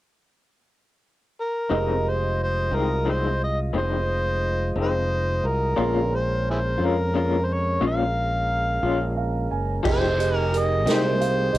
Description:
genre	slow blues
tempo	59 BPM (dotted quarters)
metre	12/8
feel	straight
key	F minor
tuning	A4 = 440 Hz
part	overdriven harmonica	melody	1.4-11.6 s	E4 to F5	-25 LUFS	left 1 dB	cassette tape
part	dark grand piano	accompaniment	1.7-11.6 s	Db4 to C6	-31 LUFS	right 9 dB	cassette tape
part	electric guitar through a small old amp	accompaniment	1.7-11.1 s	F2 to G4	-25 LUFS	left 5 dB	tremolo, cassette tape
part	tonewheel organ	sustained chords	1.7-11.6 s	D3 to Eb5	-32 LUFS	right 1 dB	slow rotary speaker, cassette tape
part	fingered electric bass	bass	1.7-11.6 s	F1 to F2	-25 LUFS	equal	transformer saturation
part	swinging big-band drum kit	drums	9.9-11.6 s	crash cymbal, hi-hat, kick drum, snare drum	-28 LUFS	right 1 dB	cassette tape
room	light reverb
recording	home recording on cassette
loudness	-21 LUFS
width	side -15 dB against mid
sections	0.0-1.7 A section; 1.7-9.8 B section; 9.8-11.6 C section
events	grand piano fill 8.8-9.8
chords	0.0 N.C.; 1.7 Fm7; 5.8 Bbm7; 9.8 Fm9

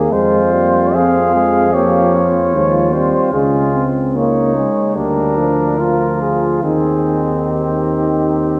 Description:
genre	classical, brass quintet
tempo	70-76 BPM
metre	4/4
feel	rubato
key	unclear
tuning	A4 = 439 Hz
part	mellow cornet	melody	0.0-8.6 s	G4 to F5	-20 LUFS	equal	none
part	clear trombone	accompaniment	0.0-8.6 s	Eb3 to Bb3	-22 LUFS	equal	none
part	warm French horn	accompaniment	0.0-8.6 s	Ab3 to F4	-23 LUFS	equal	none
part	warm bass trombone	bass	0.0-8.6 s	Db2 to F2	-22 LUFS	equal	none
part	mellow trumpet	second line	0.1-8.6 s	C4 to Ab4	-23 LUFS	equal	none
room	wet church reverb, RT60 2.9 s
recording	worn, warbling old tape, cassette tape, warbly pitch drift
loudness	-15 LUFS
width	mono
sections	0.0-8.6 A section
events	none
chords	0.1 Fm; 3.3 Db; 5.0 Bb/D; 6.6 Eb

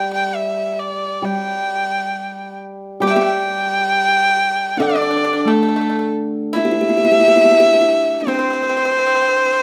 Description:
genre	chinese traditional, Chinese chamber ensemble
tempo	68 BPM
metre	2/4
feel	rubato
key	G zhi mode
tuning	A4 = 440 Hz
part	warm erhu	melody	0.0-9.6 s	A4 to G5	-18 LUFS	equal	none
part	hammered dulcimer	accompaniment	0.0-7.4 s	D3 to G3	-27 LUFS	equal	none
part	kalimba	second line	3.0-9.6 s	A3 to G4	-23 LUFS	equal	none
part	pipa	second line	3.0-9.6 s	A3 to G4	-27 LUFS	equal	none
room	moderate recital hall reverb, RT60 1.4 s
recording	close, detailed microphones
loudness	-17 LUFS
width	mono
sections	0.0-3.0 A section; 3.0-9.6 B section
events	none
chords	none

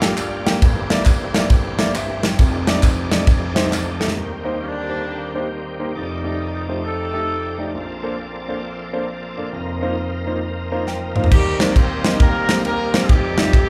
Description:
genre	uptempo gospel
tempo	135 BPM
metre	4/4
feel	swing 64% on 8ths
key	unclear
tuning	A4 = 440 Hz
part	clear horn section	melody	0.0-0.5, 4.6-7.7, 11.3-13.7 s	D3 to F5	-26 LUFS	equal	none
part	warm baby grand piano	accompaniment	0.0-13.7 s	F1 to Bb5	-26 LUFS	equal	none
part	bright tonewheel organ	sustained chords	0.0-13.7 s	G2 to D5	-31 LUFS	equal	slow rotary speaker, overdrive, chorus vibrato
part	modern studio drum kit	drums	0.0-4.2, 10.9-13.7 s	crash cymbal, kick drum, ride cymbal, snare drum, toms	-19 LUFS	equal	none
part	tambourine and handclaps	percussion	0.0-4.1 s	none	-36 LUFS	equal	none
room	moderate large studio reverb, RT60 1.4 s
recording	band playing live in one room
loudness	-20 LUFS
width	mono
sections	0.0-4.2 A section; 4.2-11.3 B section; 11.3-13.7 A section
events	grand piano fill 0.0-0.6, 10.4-11.3; drum fill 3.7-4.2, 10.9-11.3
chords	0.0 Gm9; 0.6 C13/G; 2.4 F13; 4.2 Eb6; 6.0 F13; 7.7 Bbmaj9; 9.5 F7sus4; 11.3 Eb6; 13.1 F13

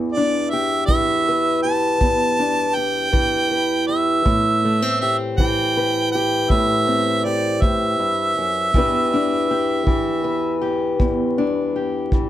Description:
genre	acoustic country blues, solo or duo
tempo	53 BPM (dotted quarters)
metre	12/8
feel	straight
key	E minor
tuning	A4 = 439 Hz
part	fingerpicked steel-string acoustic guitar	accompaniment	0.0-12.3 s	E2 to B4	-20 LUFS	left 1 dB	none
part	clear harmonica	melody	0.1-10.6 s	D5 to A5	-20 LUFS	right 2 dB	none
part	kick drum	drums	0.9-12.3 s	none	-20 LUFS	equal	none
room	moderate small room reverb, RT60 0.5 s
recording	vinyl crackle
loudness	-17 LUFS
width	side -13 dB against mid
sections	0.0-12.3 A section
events	none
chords	0.0 Em7; 4.3 Am9; 8.8 Em7

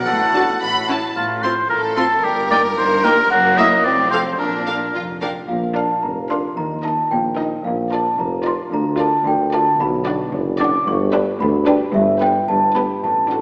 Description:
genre	cinematic, playful, whimsical film cue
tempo	111 BPM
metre	2/4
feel	straight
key	Bb major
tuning	A4 = 441 Hz
part	large celesta	melody	0.0-13.4 s	E5 to Eb6	-23 LUFS	equal	none
part	rich chamber violin section	second line	0.0-13.4 s	Bb3 to F#5	-27 LUFS	equal	none
part	concert harp	arpeggios	0.0-13.4 s	F2 to D5	-31 LUFS	equal	none
part	warm oboe	second line	0.1-5.2 s	F4 to Eb5	-21 LUFS	equal	none
part	clear chamber double bass section	bass	0.1-13.4 s	F1 to Eb2	-36 LUFS	equal	none
part	rich studio cello section	bass	0.1-13.4 s	D2 to Eb3	-30 LUFS	equal	none
part	rich studio violin section	melody	0.3-13.4 s	A4 to C6	-29 LUFS	equal	none
part	rich chamber viola section	accompaniment	0.3-13.4 s	Bb3 to Bb4	-27 LUFS	equal	none
part	mellow tuba	bass	5.5-13.4 s	F1 to Eb2	-25 LUFS	equal	none
room	wet scoring stage reverb, RT60 1.9 s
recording	small speaker sound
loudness	-18 LUFS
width	mono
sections	0.0-5.5 A section; 5.5-13.4 B section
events	none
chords	0.1 D/A; 0.6 A; 1.2 F/A; 2.2 Eb/G; 3.3 Gb7; 3.8 F; 4.4 Bb; 6.6 Eb; 7.7 Bb; 8.7 Bb/D; 9.8 Bm; 10.9 G; 11.9 G69

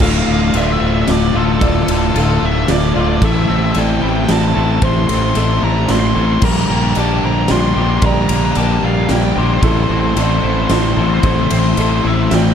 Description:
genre	post-rock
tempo	112 BPM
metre	3/4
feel	straight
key	D minor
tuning	A4 = 442 Hz
part	nasal lead guitar with a parked wah	melody	0.0-12.5 s	A4 to C6	-21 LUFS	equal	overdrive, digital delay
part	chorused pulse-width pad	sustained chords	0.0-12.5 s	F4 to Bb5	-30 LUFS	right 3 dB	none
part	clean electric guitar	arpeggios	0.0-12.5 s	D2 to A4	-27 LUFS	left 4 dB	none
part	felt-muted upright piano	arpeggios	0.0-12.5 s	A4 to D5	-28 LUFS	right 7 dB	digital delay
part	distorted electric guitar	riff	0.0-12.5 s	D2 to A4	-21 LUFS	right 12 dB	distortion
part	overdriven semi-hollow guitar	riff	0.0-12.5 s	D2 to A4	-19 LUFS	left 10 dB	none
part	growling fingered electric bass	bass	0.0-12.5 s	D1 to Bb1	-17 LUFS	equal	overdrive
part	big rock drum kit	drums	0.0-12.4 s	crash cymbal, kick drum, ride cymbal, snare drum	-20 LUFS	equal	none
room	light reverb, small room ambience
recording	dark, warm production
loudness	-12 LUFS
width	side -8 dB against mid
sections	0.0-12.5 A section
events	none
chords	0.0 Dm; 3.2 Am7; 6.4 Gm/Bb; 9.6 Am7

